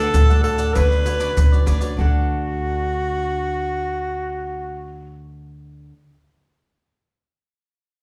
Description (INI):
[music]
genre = samba and choro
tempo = 98 BPM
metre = 4/4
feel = straight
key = D major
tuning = A4 = 440 Hz
[part]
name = breathy alto saxophone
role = melody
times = 0.0-5.2 s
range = F#4 to B4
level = -26 LUFS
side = equal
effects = none
[part]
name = cavaquinho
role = accompaniment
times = 0.0-6.0 s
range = D4 to F#5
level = -34 LUFS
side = equal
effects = none
[part]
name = nylon-string guitar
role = accompaniment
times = 0.0-6.0 s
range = A2 to B4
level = -32 LUFS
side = equal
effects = none
[part]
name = upright bass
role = bass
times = 0.0-5.9 s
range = D2 to D3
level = -27 LUFS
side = equal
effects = none
[part]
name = maracas, surdo and pandeiro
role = percussion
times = 0.1-2.1 s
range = none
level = -20 LUFS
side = equal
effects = none
[sound]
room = wet recital hall reverb, RT60 1.3 s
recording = recorded in a church or concert hall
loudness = -20 LUFS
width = mono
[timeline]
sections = 0.0-2.0 A section; 2.0-4.4 B section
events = none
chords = 0.0 D; 0.8 Bmadd9/D; 2.0 D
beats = 0.14 0.76 1.37 | 1.98 2.60 3.21 3.83